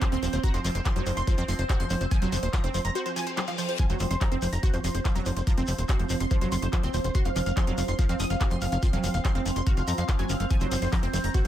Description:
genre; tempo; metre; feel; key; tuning
psychedelic trance; 143 BPM; 4/4; straight; unclear; A4 = 442 Hz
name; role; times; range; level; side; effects
supersaw stab; melody; 0.0-11.5 s; C5 to Eb6; -34 LUFS; right 1 dB; phaser, sidechain pumping, ping-pong delay
overtone-sweeping drone; sustained chords; 0.0-11.5 s; C4; -35 LUFS; right 3 dB; chorus, built-in reverb, sidechain pumping
wide unison pluck; riff; 0.0-11.5 s; F3 to Gb4; -34 LUFS; right 1 dB; auto-pan, cassette tape, sidechain pumping, ping-pong delay
drum and bass drum kit; drums; 0.0-11.5 s; handclaps, hi-hat, ride cymbal; -37 LUFS; left 1 dB; none
electronic kick drum; drums; 0.0-11.4 s; none; -25 LUFS; equal; none
shekere; percussion; 0.0-11.4 s; none; -40 LUFS; left 3 dB; none
tight sequencer bass; bass; 0.1-11.5 s; Eb1 to F2; -28 LUFS; equal; none
reverse cymbal; sound effects; 3.1-3.8 s; none; -37 LUFS; left 7 dB; none
room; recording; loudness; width
digital ambience; none; -24 LUFS; side -12 dB against mid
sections
0.0-11.5 A section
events
break 3.0-3.8; reverse cymbal 3.1-3.8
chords
0.0 F5

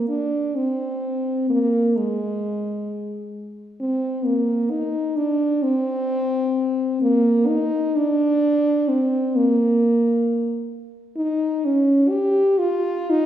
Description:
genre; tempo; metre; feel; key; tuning
classical, free, expressive piece for unaccompanied French horn; 65 BPM; 4/4; rubato; unclear; A4 = 440 Hz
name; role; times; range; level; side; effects
dark French horn; solo; 0.0-13.3 s; Ab3 to G4; -19 LUFS; equal; none
room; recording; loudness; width
wet recital hall reverb, RT60 1.7 s; recorded in a church or concert hall; -18 LUFS; side -11 dB against mid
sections
0.0-13.3 A section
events
none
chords
none

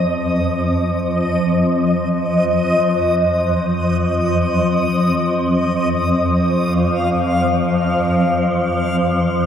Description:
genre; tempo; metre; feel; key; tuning
dark ambient drone; free time; none; none; unclear; A4 = 439 Hz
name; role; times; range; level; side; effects
swarming drone; drone; 0.0-9.5 s; F2 to F3; -16 LUFS; equal; built-in reverb
backwards swelling texture; texture; 0.0-9.5 s; Eb5 to F5; -20 LUFS; left 1 dB; built-in reverb
room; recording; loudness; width
wet plate reverb, RT60 2.9 s; echo-heavy mix; -15 LUFS; side -8 dB against mid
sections
0.0-9.5 A section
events
none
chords
0.0 Ebsus2/F; 5.8 N.C.

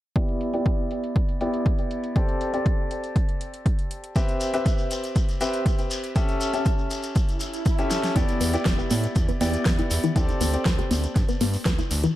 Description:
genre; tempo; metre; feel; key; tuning
progressive house; 120 BPM; 4/4; straight; E minor; A4 = 440 Hz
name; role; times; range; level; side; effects
clear grand piano; stabs; 0.2-12.1 s; B3 to E5; -27 LUFS; left 1 dB; sidechain pumping, low-pass filter, digital delay
big-room dance drum kit; drums; 0.2-12.1 s; hi-hat, snare drum; -32 LUFS; right 1 dB; overdrive, low-pass filter on hats, low-pass filter on snare
electronic kick drum; drums; 0.2-11.8 s; none; -23 LUFS; equal; overdrive
shekere; percussion; 4.2-12.1 s; none; -36 LUFS; left 2 dB; none
swell; sound effects; 7.3-8.2 s; none; -33 LUFS; right 3 dB; none
tight sequenced synth; arpeggios; 8.2-12.1 s; E3 to B4; -28 LUFS; left 2 dB; chorus, sidechain pumping, digital delay
fat analog bass; bass; 8.2-12.1 s; E1 to A2; -27 LUFS; equal; sidechain pumping
room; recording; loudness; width
light reverb, digital ambience; dark, warm production; -22 LUFS; side -14 dB against mid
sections
0.2-8.2 A section; 8.2-12.2 B section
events
filter sweep on drum 0.2-8.2; filter sweep on grand piano 0.2-8.2; swell 7.3-8.2; drum fill 7.9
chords
0.2 Em7; 2.2 D7sus4; 4.2 Cmaj7; 6.2 A7/C#; 8.2 Em7; 10.2 D7sus4

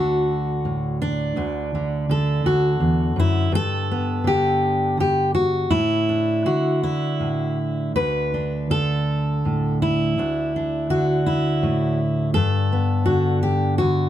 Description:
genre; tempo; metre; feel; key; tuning
folk, solo fingerstyle acoustic guitar; 55 BPM (dotted quarters); 6/8; rubato; D major; A4 = 440 Hz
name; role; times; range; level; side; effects
fingerpicked steel-string acoustic guitar; solo; 0.0-14.1 s; D2 to B4; -19 LUFS; equal; none
room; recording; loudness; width
little or no reverb; close, detailed microphones; -19 LUFS; side -11 dB against mid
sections
0.0-14.1 A section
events
none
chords
0.0 Dadd9; 3.5 Gadd9; 5.7 Asus4; 8.0 Dadd9; 12.3 Gadd9

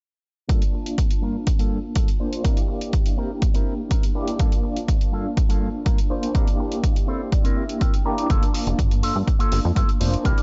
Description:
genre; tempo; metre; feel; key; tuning
filtered disco house; 123 BPM; 4/4; straight; G dorian; A4 = 440 Hz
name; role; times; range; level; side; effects
overdriven tine electric piano; accompaniment; 0.5-10.4 s; Bb3 to A5; -30 LUFS; equal; fast tremolo, phaser, sidechain pumping, low-pass filter
electric guitar with an envelope filter; riff; 0.5-10.4 s; G2 to Bb5; -32 LUFS; equal; sidechain pumping, low-pass filter
electronic hi-hat; drums; 0.5-10.4 s; none; -38 LUFS; equal; sidechain pumping on hats
electronic kick drum; drums; 0.5-10.4 s; none; -23 LUFS; equal; none
plucky analog bass; bass; 8.3-10.3 s; F1 to G2; -25 LUFS; equal; sidechain pumping, low-pass filter
room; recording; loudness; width
little or no reverb; dark, warm production, nothing above 7.8 kHz; -22 LUFS; mono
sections
0.5-10.4 A section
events
filter sweep 0.5-10.4; clean electric guitar fill 6.8-8.3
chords
0.5 Gm9; 2.4 C7; 4.4 Gm9; 6.3 C7; 8.3 Gm9

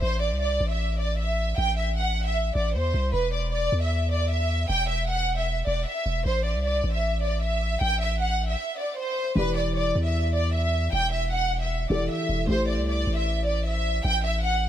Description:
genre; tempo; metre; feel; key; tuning
hip hop, trap; 154 BPM; 4/4; half-time; E minor; A4 = 440 Hz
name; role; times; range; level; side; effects
dark studio violin section; melody; 0.0-14.7 s; B4 to G5; -26 LUFS; right 1 dB; none
long sustained 808-style bass; bass; 0.0-14.7 s; E1 to E2; -26 LUFS; equal; none
felt-muted upright piano; accompaniment; 9.4-14.7 s; E3 to D5; -30 LUFS; equal; none
room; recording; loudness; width
studio ambience; none; -23 LUFS; side -11 dB against mid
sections
0.0-9.4 A section; 9.4-14.7 B section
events
break 8.6-9.4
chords
0.0 Am; 3.1 E7(no3); 6.3 A5; 9.4 Em7; 12.5 Am7

